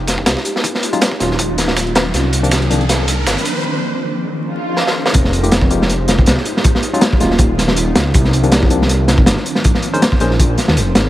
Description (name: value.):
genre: drum and bass, jungle.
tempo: 160 BPM.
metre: 4/4.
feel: swing 55% on 16ths.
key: F minor.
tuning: A4 = 440 Hz.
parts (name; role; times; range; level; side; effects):
dark detuned saw bass; bass; 0.0-11.1 s; Eb1 to Eb2; -16 LUFS; equal; tube saturation.
riser and swell; sound effects; 1.1-5.1 s; none; -25 LUFS; right 2 dB; none.
crunchy breakbeat drum kit; drums; 0.1-11.1 s; hi-hat, kick drum, snare drum; -14 LUFS; equal; high-pass filter on kick, high-pass filter on hats, high-pass filter on snare, high-pass filter on room.
dusty soul sampler-style drum kit; drums; 0.1-3.6 s; hi-hat, snare drum; -24 LUFS; right 1 dB; high-pass filter on snare, high-pass filter on hats.
barky tine electric piano; stabs; 0.9-2.8, 5.4-10.3 s; Eb3 to C5; -21 LUFS; left 2 dB; overdrive, slow stereo tremolo, low-pass filter, dub echo.
room: light reverb, small room ambience.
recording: vinyl crackle.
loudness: -12 LUFS.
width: side -14 dB against mid.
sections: 0.0-5.1 A section; 5.1-11.1 B section.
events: build-up 0.0-5.1; riser 1.1-3.6; drum fill 2.1-3.6, 4.8-5.1; break 3.6-5.1; swell 4.4-5.1; drop 5.1-11.1.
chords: 0.0 Fm11; 0.6 Ebm11; 2.1 Cm11; 3.6 Bbm11; 5.1 Fm11; 6.6 Ebm11; 8.1 Cm11; 9.6 Bbm11.